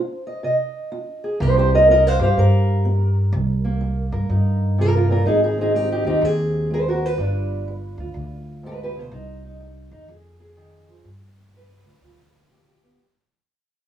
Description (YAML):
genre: acoustic country blues, solo or duo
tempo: 124 BPM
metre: 4/4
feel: swing 66% on 8ths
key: C minor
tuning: A4 = 440 Hz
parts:
  - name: fingerpicked steel-string acoustic guitar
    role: melody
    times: 0.0-13.0 s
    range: G2 to F5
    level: -20 LUFS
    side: right 1 dB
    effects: none
  - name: upright bass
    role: bass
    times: 1.4-12.9 s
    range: G1 to G2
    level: -20 LUFS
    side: equal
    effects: none
room: wet studio reverb, RT60 0.5 s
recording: rough home demo mix, small room ambience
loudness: -17 LUFS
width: side -10 dB against mid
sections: 0.0-13.0 A section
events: fade-out 0.0-13.0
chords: 0.0 F7(no3); 1.4 Cm7; 5.3 Ab; 7.2 G7; 9.1 Cm; 10.1 Fm7; 11.0 G7